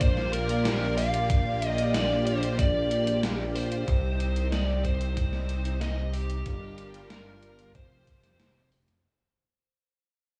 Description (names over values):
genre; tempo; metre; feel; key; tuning
synthwave; 93 BPM; 4/4; straight; Bb major; A4 = 440 Hz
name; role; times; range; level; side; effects
smooth overdriven lead guitar; melody; 0.0-8.7 s; G4 to F5; -34 LUFS; equal; cassette tape, analog delay
soft supersaw; sustained chords; 0.0-9.0 s; C3 to D5; -37 LUFS; equal; sidechain pumping, cassette tape
chorused synth bass; bass; 0.0-9.0 s; F1 to C2; -31 LUFS; equal; none
electronic kick drum; drums; 0.0-8.2 s; none; -28 LUFS; equal; cassette tape
gated 80s digital drum machine; drums; 0.0-9.0 s; hi-hat, snare drum; -36 LUFS; equal; gated reverb, gated reverb snare, cassette tape
room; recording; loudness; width
light reverb; home recording on cassette, studio reverb; -27 LUFS; mono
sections
0.0-9.0 A section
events
fade-out 2.2-9.0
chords
0.0 Bb6; 3.9 Cm; 6.5 Gm7; 7.8 Fsus2